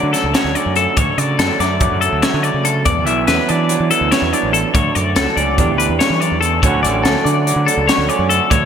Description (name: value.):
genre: math rock and midwest emo.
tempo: 286 BPM (eighths).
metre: 9/8.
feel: straight.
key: D major.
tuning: A4 = 439 Hz.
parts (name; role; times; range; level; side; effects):
electric guitar through a small old amp; accompaniment; 0.0-8.7 s; D2 to G4; -20 LUFS; right 8 dB; none.
twelve-string electric guitar; arpeggios; 0.0-8.7 s; A4 to E5; -17 LUFS; left 6 dB; spring reverb.
growling fingered electric bass; bass; 0.0-8.6 s; A1 to E3; -20 LUFS; equal; overdrive.
crisp fusion drum kit; drums; 0.1-8.6 s; hi-hat, kick drum, snare drum; -19 LUFS; equal; gated reverb.
room: moderate lush hall reverb, RT60 1.7 s, small room ambience.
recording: bright 1980s-style digital production.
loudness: -13 LUFS.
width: side -8 dB against mid.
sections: 0.0-8.7 A section.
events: none.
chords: 0.0 Dmaj7; 2.9 Esus2; 4.7 Dmaj7; 5.6 Em9; 6.6 Dmaj7.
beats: 0.14 0.35 0.56 0.77 | 0.97 1.18 1.39 1.60 1.81 2.02 2.23 2.44 2.65 | 2.86 3.07 3.28 3.49 3.69 3.90 4.11 4.32 4.53 | 4.74 4.95 5.16 5.37 5.58 5.79 6.00 6.21 6.42 | 6.63 6.84 7.05 7.26 7.47 7.67 7.88 8.09 8.30 | 8.51.